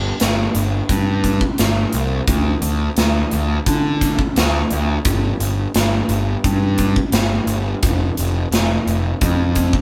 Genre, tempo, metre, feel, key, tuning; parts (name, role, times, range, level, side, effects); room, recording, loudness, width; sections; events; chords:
quiet-loud alternative rock; 86 BPM; 4/4; straight; A4 = 440 Hz
fuzz picked electric bass; bass; 0.0-9.7 s; F1 to D3; -21 LUFS; equal; overdrive
big rock drum kit; drums; 0.2-9.8 s; hi-hat, kick drum, snare drum; -21 LUFS; equal
light reverb; band playing live in one room; -18 LUFS; mono
0.0-9.8 A section